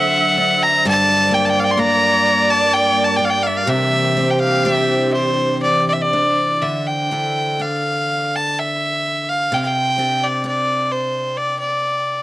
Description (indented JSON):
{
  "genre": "celtic folk, Celtic slow air",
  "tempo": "62 BPM",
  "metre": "3/4",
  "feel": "uneven beats, rubato",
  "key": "D minor",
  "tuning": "A4 = 439 Hz",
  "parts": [
    { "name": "bright fiddle", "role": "melody", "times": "0.0-12.2 s", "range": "C5 to C6", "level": "-17 LUFS", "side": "equal", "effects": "none" },
    { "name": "rich viola", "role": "second line", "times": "0.0-6.1 s", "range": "G4 to E5", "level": "-20 LUFS", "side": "right 1 dB", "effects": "tape echo" },
    { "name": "picked steel-string acoustic guitar", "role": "accompaniment", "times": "0.0-12.2 s", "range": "G2 to A4", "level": "-23 LUFS", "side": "equal", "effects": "none" },
    { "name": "glassy FM pad", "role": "sustained chords", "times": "0.0-6.6 s", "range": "E3 to C5", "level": "-26 LUFS", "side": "left 1 dB", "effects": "ensemble chorus, built-in reverb" }
  ],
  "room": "light reverb",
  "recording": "dry, gritty hardware recording, cassette tape",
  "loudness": "-15 LUFS",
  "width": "side -16 dB against mid",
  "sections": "0.0-6.6 A section; 6.6-12.2 B section",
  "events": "none",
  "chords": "0.0 D7; 0.8 Gm; 3.7 Cadd9; 6.6 Dsus2; 9.5 Csus2"
}